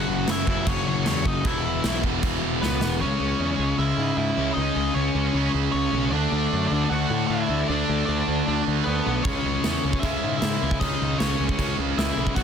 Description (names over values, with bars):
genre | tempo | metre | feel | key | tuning
punk rock | 154 BPM | 4/4 | straight | unclear | A4 = 440 Hz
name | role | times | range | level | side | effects
nasal lead guitar with a parked wah | melody | 0.0-12.4 s | B3 to F#5 | -28 LUFS | left 2 dB | overdrive
overdriven electric guitar | riff | 0.0-12.4 s | E2 to D4 | -28 LUFS | right 15 dB | none
sludgy distorted guitar | riff | 0.0-12.4 s | E2 to D4 | -28 LUFS | left 12 dB | overdrive
fuzz picked electric bass | bass | 0.0-12.4 s | E1 to A2 | -27 LUFS | right 1 dB | overdrive
big rock drum kit | drums | 0.3-2.9, 9.2-12.4 s | crash cymbal, kick drum, snare drum | -27 LUFS | equal | none
room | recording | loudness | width
little or no reverb | dense, heavily limited modern master | -21 LUFS | side -7 dB against mid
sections
0.0-3.0 A section; 3.0-12.4 B section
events
drum fill 2.6-3.0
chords
0.0 F#5; 1.5 E5; 3.0 C#m; 6.1 D; 9.3 C#m